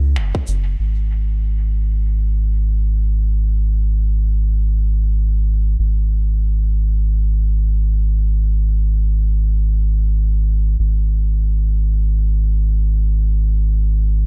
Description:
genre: ambient dub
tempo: free time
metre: none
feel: none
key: unclear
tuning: A4 = 440 Hz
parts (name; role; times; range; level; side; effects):
- soft dub sub bass; bass; 0.0-14.3 s; F#1 to C#2; -18 LUFS; equal; none
- finger snaps and shaker; drums; 0.2-0.6 s; none; -39 LUFS; equal; low-pass filter on perc, low-pass filter on snare, low-pass filter on room, dub echo
- electronic kick drum; drums; 0.3-0.5 s; none; -25 LUFS; equal; overdrive
room: little or no reverb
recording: dark, warm production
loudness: -18 LUFS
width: mono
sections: 0.8-14.3 A section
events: none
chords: none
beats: free time

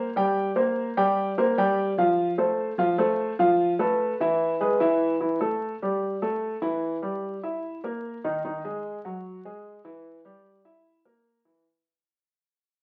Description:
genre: jazz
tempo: 149 BPM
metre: 4/4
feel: straight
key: unclear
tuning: A4 = 440 Hz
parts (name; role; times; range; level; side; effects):
- warm concert grand piano; solo; 0.0-11.6 s; Eb3 to G5; -26 LUFS; equal; none
room: moderate studio reverb, RT60 0.8 s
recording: very old 78 rpm record, vinyl crackle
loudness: -25 LUFS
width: mono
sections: 0.0-5.2 A section; 5.2-11.7 B section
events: fade-out 5.2-11.7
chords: 0.0 Gmadd11; 2.0 F; 3.6 Fmaj7#11; 4.4 E; 5.2 A5; 6.8 Edim; 8.4 Ab5; 10.1 Edim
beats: | 0.36 0.77 1.17 1.58 | 1.98 2.38 2.79 3.19 | 3.60 4.00 4.40 4.81 | 5.21 5.61 6.02 6.42 | 6.83 7.23 7.63 8.04 | 8.44 8.84 9.25 9.65 | 10.05 10.46 10.86 11.26

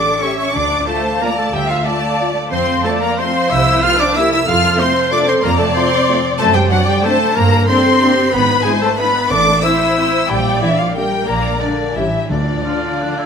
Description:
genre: classical, orchestral ballroom waltz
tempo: 163-203 BPM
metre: 3/4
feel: rubato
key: D minor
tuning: A4 = 439 Hz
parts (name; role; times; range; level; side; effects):
- dark studio violin section; melody; 0.0-13.3 s; D5 to F6; -21 LUFS; left 3 dB; none
- mellow clarinet; second line; 0.0-13.3 s; D4 to F5; -22 LUFS; left 1 dB; none
- rich symphonic violin section; second line; 0.0-13.3 s; D5 to F6; -23 LUFS; left 2 dB; none
- silver concert flute; second line; 0.0-13.3 s; D5 to F6; -22 LUFS; left 1 dB; none
- warm symphonic viola section; accompaniment; 0.0-13.3 s; F4 to E5; -21 LUFS; equal; none
- concert harp; arpeggios; 0.0-13.3 s; F2 to C6; -24 LUFS; left 5 dB; none
- warm symphonic cello section; bass; 0.0-13.3 s; D3 to F4; -20 LUFS; right 2 dB; none
- mellow French horn section; sustained chords; 0.2-13.1 s; F3 to G4; -27 LUFS; left 4 dB; none
- rich symphonic double bass section; bass; 0.5-12.6 s; G#1 to G2; -22 LUFS; right 4 dB; none
- timpani; percussion; 9.3-9.8, 12.3-12.8 s; A2 to D3; -26 LUFS; equal; none
- mellow cor anglais; second line; 12.7-13.3 s; D4 to F4; -25 LUFS; right 5 dB; none
room: moderate scoring stage reverb, RT60 1.7 s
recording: none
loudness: -12 LUFS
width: side -6 dB against mid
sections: 0.0-13.3 A section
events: none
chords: 0.0 A7; 0.5 Dm; 2.5 F; 3.5 C7; 4.5 F; 6.4 D7/F#; 7.4 Gm; 8.3 E7/G#; 9.3 Am; 10.3 Gm/Bb; 11.3 Bb7; 12.0 A7; 12.3 Dm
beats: 0.22 | 0.54 0.87 1.21 | 1.53 1.86 2.20 | 2.52 2.85 3.19 | 3.51 3.83 4.17 | 4.48 4.79 5.13 | 5.43 5.75 6.08 | 6.39 6.71 7.05 | 7.37 7.69 8.02 | 8.33 8.65 8.99 | 9.31 9.63 9.97 | 10.29 10.62 10.96 | 11.28 11.61 11.96 | 12.31 12.65 13.02

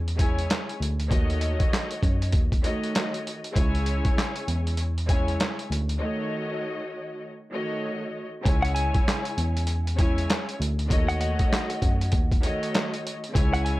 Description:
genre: hip hop, boom-bap hip-hop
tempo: 98 BPM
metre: 4/4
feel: swing 60% on 16ths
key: C# minor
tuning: A4 = 441 Hz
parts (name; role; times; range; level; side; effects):
- tine electric piano; bass; 0.0-13.8 s; C#2 to F#2; -26 LUFS; equal; medium stereo tremolo
- boom bap sampler-style drum kit; drums; 0.1-13.8 s; handclaps, hi-hat, kick drum, snare drum; -25 LUFS; equal; none
- warm studio string section; accompaniment; 0.2-13.8 s; C#3 to G#5; -30 LUFS; equal; high-pass filter, low-pass filter
- direct-recorded clean electric guitar; melody; 8.6-13.8 s; F#5 to G#5; -32 LUFS; left 1 dB; high-pass filter, low-pass filter, plate reverb, tape echo
room: light reverb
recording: none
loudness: -23 LUFS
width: side -18 dB against mid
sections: 0.0-8.5 A section; 8.5-13.8 B section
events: break 6.0-8.5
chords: 0.0 C#m; 1.1 D#m7b5; 3.6 C#m; 6.0 D#m7b5; 8.5 C#m; 10.9 D#m7b5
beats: 0.50 | 1.11 1.72 2.33 2.95 | 3.56 4.17 4.78 5.39 | 6.01 6.62 7.23 7.84 | 8.46 9.07 9.68 10.29 | 10.90 11.52 12.13 12.74 | 13.35

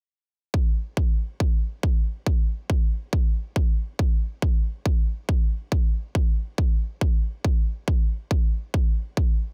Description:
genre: trance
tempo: 139 BPM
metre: 4/4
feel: straight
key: none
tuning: none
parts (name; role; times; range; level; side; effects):
- electronic kick drum; drums; 0.5-9.3 s; none; -24 LUFS; equal; overdrive
room: little or no reverb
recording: dense, heavily limited modern master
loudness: -24 LUFS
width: mono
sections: 0.5-9.5 A section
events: none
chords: none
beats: | 0.54 0.97 1.40 1.83 | 2.27 2.70 3.13 3.56 | 3.99 4.42 4.86 5.29 | 5.72 6.15 6.58 7.01 | 7.45 7.88 8.31 8.74 | 9.17

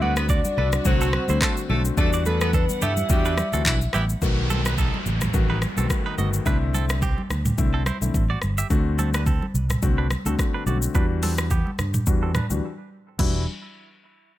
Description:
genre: afrobeats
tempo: 107 BPM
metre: 4/4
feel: swing 55% on 16ths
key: E minor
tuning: A4 = 440 Hz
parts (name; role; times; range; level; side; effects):
- soft octave-layered synth lead; melody; 0.0-3.9 s; A4 to F#5; -28 LUFS; left 2 dB; chorus
- warm horn section; second line; 0.0-4.0 s; E3 to B4; -30 LUFS; right 1 dB; none
- warm grand piano; accompaniment; 0.0-13.4 s; D3 to F#4; -29 LUFS; left 7 dB; low-pass filter
- dark studio string section; sustained chords; 0.0-4.2 s; D3 to F#5; -35 LUFS; equal; none
- direct-recorded clean electric guitar; riff; 0.0-13.5 s; B3 to E5; -32 LUFS; right 7 dB; low-pass filter, tape echo
- fingered electric bass; bass; 0.0-13.5 s; E1 to G2; -24 LUFS; equal; none
- congas; percussion; 0.0-13.5 s; none; -33 LUFS; right 2 dB; none
- afro-pop drum kit; drums; 0.2-13.3 s; crash cymbal, handclaps, hi-hat, kick drum, rim click, shaker, toms; -24 LUFS; equal; none
- downlifter; sound effects; 4.2-8.7 s; none; -34 LUFS; equal; none
room: digital ambience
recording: none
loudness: -20 LUFS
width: side -14 dB against mid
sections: 0.0-4.2 A section; 4.2-13.2 B section; 13.2-14.4 C section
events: filter sweep 4.2-13.2; break 12.6-13.2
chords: 0.0 D7; 2.0 Em9; 4.2 B7; 6.5 C69; 8.7 D7; 10.9 Em9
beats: 0.29 0.85 1.41 | 1.98 2.54 3.10 3.66 | 4.22 4.78 5.34 5.90 | 6.46 7.02 7.58 8.14 | 8.70 9.27 9.83 10.39 | 10.95 11.51 12.07 12.63 | 13.19

